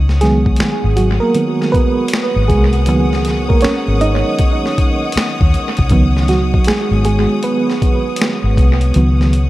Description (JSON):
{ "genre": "R&B, neo-soul", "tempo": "79 BPM", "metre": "4/4", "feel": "swing 63% on 16ths", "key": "unclear", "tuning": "A4 = 439 Hz", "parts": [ { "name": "FM electric piano with tremolo", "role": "accompaniment", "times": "0.0-9.5 s", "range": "D#3 to D#5", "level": "-16 LUFS", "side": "right 2 dB", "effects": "tape echo" }, { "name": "clear studio string section", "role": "sustained chords", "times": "0.0-9.5 s", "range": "C#5 to D#6", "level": "-25 LUFS", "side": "left 3 dB", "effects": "none" }, { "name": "vintage muted fingered electric bass", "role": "bass", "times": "0.0-9.5 s", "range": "G#1 to D#2", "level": "-14 LUFS", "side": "equal", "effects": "none" }, { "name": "boom bap sampler-style drum kit", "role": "drums", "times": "0.1-9.5 s", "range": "finger snaps, hi-hat, kick drum, snare drum", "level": "-17 LUFS", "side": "equal", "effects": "tape echo" } ], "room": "light reverb", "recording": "echo-heavy mix", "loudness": "-12 LUFS", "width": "side -16 dB against mid", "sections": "0.0-9.5 A section", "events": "FM electric piano solo 0.0-9.5", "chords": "0.0 C#9sus4" }